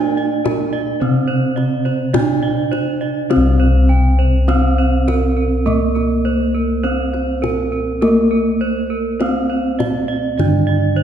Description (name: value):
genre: Javanese gamelan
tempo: 51 BPM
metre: 4/4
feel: straight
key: unclear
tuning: A4 = 440 Hz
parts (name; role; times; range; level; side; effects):
- gamelan-type bronze metallophone; melody; 0.0-11.0 s; Bb3-40c to D4+40c; -19 LUFS; right 2 dB; none
- gamelan-type bronze metallophone; accompaniment; 0.0-11.0 s; C3 to Bb3-40c; -23 LUFS; left 2 dB; none
- gamelan-type bronze metallophone; arpeggios; 0.0-11.0 s; Bb4-40c to G5+20c; -23 LUFS; right 5 dB; none
- gamelan-type bossed gongs; bass; 0.0-11.0 s; C2 to Bb4-40c; -18 LUFS; left 1 dB; none
- kendang; percussion; 0.2-10.8 s; none; -24 LUFS; left 3 dB; none
room: wet concert hall reverb, RT60 2.1 s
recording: recorded in a church or concert hall, nothing above 10.5 kHz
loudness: -14 LUFS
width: side -9 dB against mid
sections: 0.0-3.3 A section; 3.3-11.0 B section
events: none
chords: none